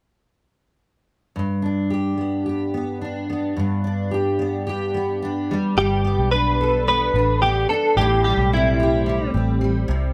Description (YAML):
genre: acoustic pop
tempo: 109 BPM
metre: 4/4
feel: straight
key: G major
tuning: A4 = 440 Hz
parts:
  - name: fingerpicked steel-string acoustic guitar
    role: accompaniment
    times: 1.4-10.1 s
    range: G2 to A4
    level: -25 LUFS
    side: equal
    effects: double-tracked
  - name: direct-recorded clean electric guitar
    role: melody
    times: 5.8-9.3 s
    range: E4 to B4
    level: -21 LUFS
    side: equal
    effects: ensemble chorus
  - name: vintage muted fingered electric bass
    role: bass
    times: 5.8-10.1 s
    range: G1 to C2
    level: -24 LUFS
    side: equal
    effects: none
room: moderate studio reverb, RT60 0.7 s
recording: none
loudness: -21 LUFS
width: mono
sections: 1.4-5.8 A section; 5.8-10.1 B section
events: none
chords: 1.4 G; 5.5 N.C.; 5.8 Gadd9; 8.0 Am7